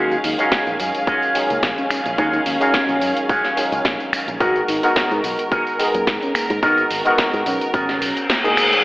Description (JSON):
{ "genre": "nu-disco, nu disco", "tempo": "108 BPM", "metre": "4/4", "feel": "swing 54% on 16ths", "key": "unclear", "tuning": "A4 = 441 Hz", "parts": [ { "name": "soft octave-layered synth lead", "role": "melody", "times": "0.0-8.8 s", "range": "Bb3 to Gb4", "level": "-26 LUFS", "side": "equal", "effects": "chorus, tremolo, diffuse ambient delay" }, { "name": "barky tine electric piano", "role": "accompaniment", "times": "0.0-8.8 s", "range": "Cb3 to F5", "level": "-22 LUFS", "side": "equal", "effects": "ensemble chorus, sidechain pumping, diffuse ambient delay" }, { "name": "rich studio string section", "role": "sustained chords", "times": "0.0-8.8 s", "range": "Db4 to F5", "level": "-26 LUFS", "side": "equal", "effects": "sidechain pumping" }, { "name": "electric guitar with an envelope filter", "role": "riff", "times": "0.0-8.8 s", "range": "Cb4 to Bb4", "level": "-22 LUFS", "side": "equal", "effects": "lush chorus, diffuse ambient delay" }, { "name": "fingered electric bass with an envelope filter", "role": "bass", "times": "0.0-8.1 s", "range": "Ab1 to Ab2", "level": "-29 LUFS", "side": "equal", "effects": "tube saturation" }, { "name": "house drum kit", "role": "drums", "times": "0.1-8.8 s", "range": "finger snaps, hi-hat, snare drum, tambourine", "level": "-23 LUFS", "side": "equal", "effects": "none" }, { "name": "electronic kick drum", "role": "drums", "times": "0.5-7.9 s", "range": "none", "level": "-24 LUFS", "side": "equal", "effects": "none" }, { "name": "reverse cymbal", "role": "sound effects", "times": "8.0-8.8 s", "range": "none", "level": "-17 LUFS", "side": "left 1 dB", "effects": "none" } ], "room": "wet lush hall reverb, RT60 1.9 s, digital ambience", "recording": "dreamy mix soaked in reverb, telephone sound", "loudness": "-16 LUFS", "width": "side -20 dB against mid", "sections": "0.0-8.8 A section", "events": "reverse cymbal 8.0-8.8; kick drops out 8.3-8.8", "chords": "0.0 Ebm11; 4.4 Abm9" }